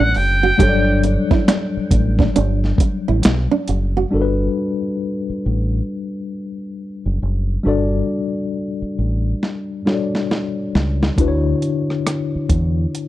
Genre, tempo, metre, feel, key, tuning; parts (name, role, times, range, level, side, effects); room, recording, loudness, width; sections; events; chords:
R&B, neo-soul; 68 BPM; 4/4; swing 62% on 16ths; G major, G lydian from 4.1 s; A4 = 441 Hz
trumpet with metal mute; melody; 0.0-1.0 s; F#5 to G5; -21 LUFS; right 1 dB; tape echo
nylon-string guitar; second line; 0.0-4.1 s; D4 to G4; -21 LUFS; right 7 dB
tine electric piano; accompaniment; 0.0-13.1 s; D3 to D5; -21 LUFS; left 3 dB; medium stereo tremolo
deep dub fingered electric bass; bass; 0.0-12.8 s; F#1 to E2; -18 LUFS; equal
dusty soul sampler-style drum kit; drums; 0.1-3.9, 9.4-13.1 s; finger snaps, hi-hat, kick drum, rim click, snare drum; -18 LUFS; equal; overdrive
little or no reverb; dry, close 1970s-style studio recording; -16 LUFS; side -14 dB against mid
0.0-4.1 A section; 4.1-13.1 B section
drum fill 9.4-11.2
0.0 Gmaj9; 11.2 Dmaj9